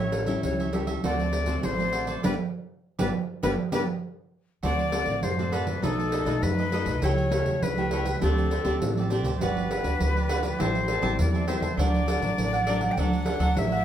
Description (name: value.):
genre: samba and choro.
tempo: 100 BPM.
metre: 4/4.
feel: straight.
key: unclear.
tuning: A4 = 435 Hz.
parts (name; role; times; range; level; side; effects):
breathy bright jazz flute; second line; 0.0-13.8 s; A4 to G5; -30 LUFS; left 3 dB; none.
cavaquinho; accompaniment; 0.0-13.8 s; D4 to A5; -33 LUFS; right 5 dB; none.
nylon-string guitar; accompaniment; 0.0-13.8 s; A2 to B4; -30 LUFS; left 2 dB; none.
upright bass; bass; 0.0-13.8 s; G1 to F#2; -29 LUFS; equal; none.
pandeiro; percussion; 0.1-13.8 s; none; -29 LUFS; right 4 dB; none.
room: wet studio reverb, RT60 0.5 s.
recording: heard from further back in the room.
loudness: -24 LUFS.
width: side -10 dB against mid.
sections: 0.0-4.6 A section; 4.6-13.8 B section.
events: band accent 2.2-4.6.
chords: 0.0 A7; 1.0 D7; 2.2 G; 4.6 D7; 5.8 B7; 7.0 A7/C#; 8.2 D7sus4; 9.4 Gmaj7; 10.6 Am7; 11.8 D.